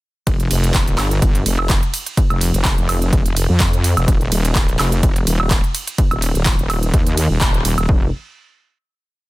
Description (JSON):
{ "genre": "bass house", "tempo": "126 BPM", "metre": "4/4", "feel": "swing 54% on 16ths", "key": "unclear", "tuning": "A4 = 440 Hz", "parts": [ { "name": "wobble bass", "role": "bass", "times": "0.3-8.1 s", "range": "Eb1 to F2", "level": "-17 LUFS", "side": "equal", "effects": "chorus, tube saturation, sidechain pumping" }, { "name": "big-room dance drum kit", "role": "drums", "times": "0.3-7.9 s", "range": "handclaps, hi-hat, ride cymbal, woodblock", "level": "-22 LUFS", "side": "right 2 dB", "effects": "none" }, { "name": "electronic kick drum", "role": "drums", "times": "0.3-8.0 s", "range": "none", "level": "-16 LUFS", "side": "equal", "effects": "none" } ], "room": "little or no reverb", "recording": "dense, heavily limited modern master", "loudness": "-14 LUFS", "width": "side -19 dB against mid", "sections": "0.3-7.9 drop; 7.9-9.3 final chord", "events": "drop 0.3-7.9; band accent 7.4", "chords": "none", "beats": "| 0.27 0.74 1.22 1.70 | 2.17 2.65 3.13 3.60 | 4.08 4.55 5.03 5.51 | 5.98 6.46 6.94 7.41 | 7.89" }